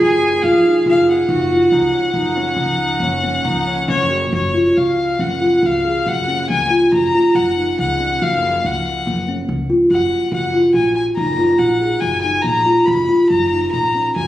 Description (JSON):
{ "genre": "contemporary instrumental, chamber music in an uneven meter", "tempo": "140 BPM", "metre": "7/4", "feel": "straight", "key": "F# major", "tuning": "A4 = 437 Hz", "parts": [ { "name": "rich violin", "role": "melody", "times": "0.0-14.3 s", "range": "C#5 to B5", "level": "-20 LUFS", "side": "left 2 dB", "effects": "none" }, { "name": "rich cello", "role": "second line", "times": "0.0-4.1 s", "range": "C#4 to G#4", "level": "-23 LUFS", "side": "right 2 dB", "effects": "none" }, { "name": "kalimba", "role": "arpeggios", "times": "0.0-14.3 s", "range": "E#3 to G#4", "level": "-16 LUFS", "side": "equal", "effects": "none" }, { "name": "upright bass", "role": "bass", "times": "0.0-14.3 s", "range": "F#1 to E#2", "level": "-24 LUFS", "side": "equal", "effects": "none" } ], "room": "moderate recital hall reverb, RT60 1.7 s", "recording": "recorded on a phone in the room, club reverb, compression", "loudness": "-14 LUFS", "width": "side -13 dB against mid", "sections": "0.0-4.3 A section; 4.3-14.3 B section", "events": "none", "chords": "0.0 A#7(no3)/F# (rootless); 1.3 F#maj7(no3); 4.3 F#maj7" }